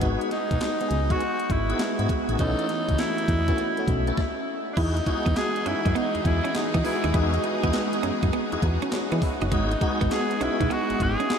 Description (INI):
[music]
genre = R&B, new jack swing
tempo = 101 BPM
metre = 4/4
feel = swing 66% on 16ths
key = E major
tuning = A4 = 441 Hz
[part]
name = FM electric piano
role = accompaniment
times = 0.0-11.4 s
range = E3 to F#5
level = -30 LUFS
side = equal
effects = chorus, phaser
[part]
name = tonewheel organ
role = stabs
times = 0.0-10.6 s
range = B3 to A4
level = -33 LUFS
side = left 1 dB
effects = overdrive, chorus vibrato, slow rotary speaker, diffuse ambient delay
[part]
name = solid FM bass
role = bass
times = 0.0-11.2 s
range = F#1 to E3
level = -26 LUFS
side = equal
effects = none
[part]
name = gated 80s digital drum machine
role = drums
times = 0.0-11.4 s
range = crash cymbal, handclaps, hi-hat, kick drum, snare drum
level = -29 LUFS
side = equal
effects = gated reverb, gated reverb snare, overdrive
[part]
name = raspy tenor saxophone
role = melody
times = 0.3-11.4 s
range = D4 to G#4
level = -28 LUFS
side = equal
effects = diffuse ambient delay
[part]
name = clear studio string section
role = sustained chords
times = 4.8-11.4 s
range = E3 to G#4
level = -34 LUFS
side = equal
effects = none
[part]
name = clean electric guitar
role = riff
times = 4.8-11.3 s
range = G#3 to E4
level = -32 LUFS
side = right 5 dB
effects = wide subtle chorus
[sound]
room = wet huge ambient reverb, RT60 8.2 s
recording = dreamy mix soaked in reverb, lossy compression artefacts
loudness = -22 LUFS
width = side -7 dB against mid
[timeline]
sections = 0.0-4.8 A section; 4.8-11.4 B section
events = stop 4.2-4.8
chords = 0.0 G#m7; 2.4 B9sus4; 4.8 Emaj9; 9.5 G#m7